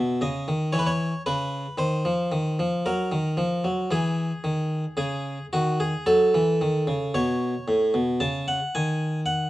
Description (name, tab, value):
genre	classical, baroque-style suite movement for harpsichord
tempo	56 BPM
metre	4/4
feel	rubato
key	C# minor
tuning	A4 = 440 Hz
part	harpsichord	solo	0.0-9.5 s	A2 to A5	-22 LUFS	equal	none
room	light reverb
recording	dark, warm production, nothing above 10.4 kHz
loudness	-22 LUFS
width	side -16 dB against mid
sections	0.0-9.5 A section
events	none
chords	0.0 C#m; 1.8 Cdim/Eb; 3.9 C#m; 6.1 F#m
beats	0.76 | 1.80 2.87 3.94 5.00 | 6.08 7.14 8.21 9.26